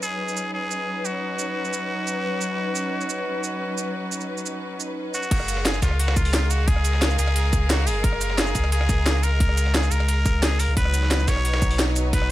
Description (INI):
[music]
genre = liquid drum and bass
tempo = 176 BPM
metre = 4/4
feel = straight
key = F# major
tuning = A4 = 443 Hz
[part]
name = trumpet with straight mute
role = melody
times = 0.0-12.3 s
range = E#4 to C#5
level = -28 LUFS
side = equal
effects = tape echo
[part]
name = rich symphonic string section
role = sustained chords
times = 0.0-12.3 s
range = F#3 to E#5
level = -29 LUFS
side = equal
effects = none
[part]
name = drum and bass drum kit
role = drums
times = 0.0-12.3 s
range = crash cymbal, hi-hat, rim click, shaker, snare drum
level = -27 LUFS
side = equal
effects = none
[part]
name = warm sub bass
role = bass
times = 5.3-12.3 s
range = F#1 to C#2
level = -22 LUFS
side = equal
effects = none
[part]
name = dusty soul sampler-style drum kit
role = drums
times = 5.3-12.2 s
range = hi-hat, ride cymbal, snare drum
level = -32 LUFS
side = right 2 dB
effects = high-pass filter on cymbals, high-pass filter on snare, high-pass filter on hats
[part]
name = electronic kick drum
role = drums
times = 5.3-12.2 s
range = none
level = -22 LUFS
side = equal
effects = none
[sound]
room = digital ambience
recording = none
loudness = -20 LUFS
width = side -15 dB against mid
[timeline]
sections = 0.0-5.3 A section; 5.3-12.3 B section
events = drop 5.3-12.3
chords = 0.0 C#9sus4; 5.3 F#maj9; 10.8 C#9sus4